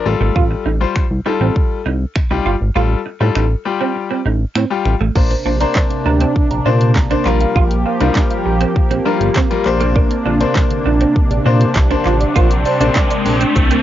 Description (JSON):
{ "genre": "dance-pop", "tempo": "100 BPM", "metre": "4/4", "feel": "straight", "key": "unclear", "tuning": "A4 = 440 Hz", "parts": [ { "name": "bright concert grand piano", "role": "accompaniment", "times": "0.0-13.3 s", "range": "G3 to C5", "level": "-20 LUFS", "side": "left 8 dB", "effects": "sidechain pumping, cassette tape" }, { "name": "chorused synth bass", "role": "bass", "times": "0.1-13.8 s", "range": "G1 to Bb2", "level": "-16 LUFS", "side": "equal", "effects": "sidechain pumping" }, { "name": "clean electric guitar", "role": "riff", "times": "0.2-13.8 s", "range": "A3 to F4", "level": "-21 LUFS", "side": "right 9 dB", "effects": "ensemble chorus, cassette tape" }, { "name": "pop drum kit", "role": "drums", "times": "0.4-13.8 s", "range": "crash cymbal, finger snaps, handclaps, hi-hat, kick drum, shaker, snare drum", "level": "-16 LUFS", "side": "equal", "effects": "cassette tape" }, { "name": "lush unison pad", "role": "sustained chords", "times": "5.2-13.8 s", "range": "C3 to G4", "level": "-19 LUFS", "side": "equal", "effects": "chorus, phaser, sidechain pumping, cassette tape" }, { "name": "soft round pluck", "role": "arpeggios", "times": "5.2-13.8 s", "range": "D3 to Bb5", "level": "-26 LUFS", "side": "right 9 dB", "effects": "chorus, sidechain pumping, cassette tape, analog delay" }, { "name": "riser", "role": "sound effects", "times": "11.2-13.8 s", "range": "none", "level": "-23 LUFS", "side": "left 1 dB", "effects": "none" } ], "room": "light reverb", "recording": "home recording on cassette, nothing above 7.5 kHz", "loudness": "-13 LUFS", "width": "side -12 dB against mid", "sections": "0.0-5.2 A section; 5.2-13.8 B section", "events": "kick muted 2.8-5.2; riser 11.2-13.8", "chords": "0.1 Fadd9; 5.2 Bbadd9; 7.3 Gm7/Bb; 9.7 Bbadd9" }